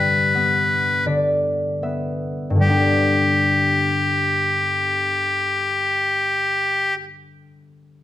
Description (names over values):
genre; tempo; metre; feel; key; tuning
celtic folk, Celtic slow air; 24-29 BPM (dotted quarters); 6/8; rubato; G major; A4 = 440 Hz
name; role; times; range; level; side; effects
loud bright bagpipes; melody; 0.0-6.9 s; G4 to B4; -18 LUFS; left 1 dB; slapback echo
concert harp; accompaniment; 0.0-7.0 s; G2 to E5; -21 LUFS; left 1 dB; none
room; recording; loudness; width
moderate recital hall reverb, RT60 1.2 s; dark, warm production; -17 LUFS; side -13 dB against mid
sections
0.0-2.6 A section; 2.6-7.4 B section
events
slowing down 0.0-2.6; harp fill 0.3-2.6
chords
0.0 G